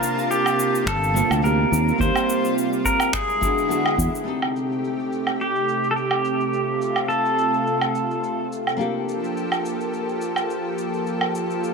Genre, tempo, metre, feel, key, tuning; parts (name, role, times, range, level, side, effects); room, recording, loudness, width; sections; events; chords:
sunset chillout; 106 BPM; 4/4; swing 54% on 16ths; A4 = 440 Hz
pedal steel guitar; melody; 0.0-8.5 s; G4 to C5; -23 LUFS; equal; vintage 12-bit sampler grit, digital delay
nylon-string guitar; accompaniment; 0.0-11.7 s; A3 to A5; -27 LUFS; moving between left 4 dB and right 8 dB; auto-pan, digital delay
lush unison pad; sustained chords; 0.0-11.7 s; C3 to A5; -26 LUFS; equal; chorus
electronic cabasa, woodblock and finger snaps; drums; 0.0-11.7 s; -27 LUFS; right 2 dB; low-pass filter on perc, low-pass filter on snare, low-pass filter on room
fingered electric bass; bass; 0.9-4.1 s; G1 to E2; -22 LUFS; left 1 dB
electronic kick drum; drums; 0.9-4.1 s; -29 LUFS; left 1 dB
moderate lush hall reverb, RT60 2.4 s; -20 LUFS; side -4 dB against mid
0.0-4.3 A section; 4.3-11.7 B section
0.0 Gm11; 1.7 Eb69; 3.1 E7; 4.3 Am7b5; 8.8 Gm9